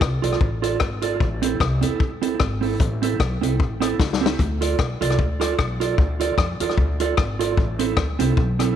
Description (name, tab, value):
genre	ska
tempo	151 BPM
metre	4/4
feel	swing 56% on 8ths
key	D dorian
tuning	A4 = 440 Hz
part	upright bass	bass	0.0-8.7 s	G#1 to F2	-24 LUFS	left 1 dB	none
part	vintage drum kit	drums	0.0-8.7 s	hi-hat, kick drum, rim click, snare drum	-22 LUFS	left 3 dB	none
part	mellow electric guitar	accompaniment	0.2-8.7 s	C4 to D5	-24 LUFS	right 9 dB	slapback echo
room	light reverb, small room ambience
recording	1960s-style stereo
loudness	-19 LUFS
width	side -9 dB against mid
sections	0.0-8.8 A section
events	drum fill 4.0-4.4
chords	0.0 Dm; 1.2 Am; 4.4 Dm; 7.6 Am